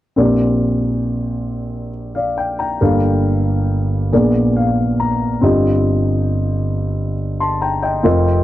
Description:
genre	gospel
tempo	46 BPM (dotted quarters)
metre	6/8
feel	straight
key	Bb major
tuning	A4 = 442 Hz
part	dark concert grand piano	accompaniment	0.2-8.4 s	F1 to C6	-15 LUFS	equal	none
room	light reverb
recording	dry, close 1970s-style studio recording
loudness	-15 LUFS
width	side -14 dB against mid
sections	0.2-8.4 A section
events	grand piano fill 4.1-5.4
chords	0.2 Bb69; 2.8 Gm9; 4.1 Bb7b9; 5.4 Eb69/G

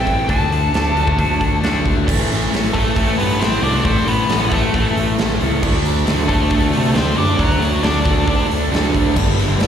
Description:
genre	quiet-loud alternative rock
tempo	136 BPM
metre	4/4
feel	straight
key	A dorian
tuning	A4 = 440 Hz
part	nasal lead guitar with a parked wah	melody	0.0-8.5 s	F#3 to A5	-21 LUFS	left 1 dB	overdrive, slapback echo, tape echo
part	twelve-string electric guitar	arpeggios	0.0-2.1 s	D3 to A4	-23 LUFS	right 2 dB	slapback echo
part	thick fuzz guitar	riff	0.0-9.7 s	G2 to D4	-22 LUFS	left 11 dB	distortion, slapback echo
part	fuzz fingered electric bass	bass	0.0-9.7 s	G1 to C3	-20 LUFS	equal	overdrive
part	big rock drum kit	drums	0.1-9.7 s	crash cymbal, hi-hat, kick drum, snare drum	-20 LUFS	right 1 dB	none
part	raw garage guitar	riff	2.1-9.7 s	G2 to D4	-23 LUFS	right 14 dB	overdrive, slapback echo
part	rich studio string section	sustained chords	9.2-9.7 s	D3 to E4	-29 LUFS	left 3 dB	none
room	light reverb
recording	live gig heard through the venue's PA, recital hall reverb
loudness	-14 LUFS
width	side -8 dB against mid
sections	0.0-2.1 A section; 2.1-9.7 B section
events	none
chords	0.3 D; 2.1 Am; 5.6 D; 9.2 G6

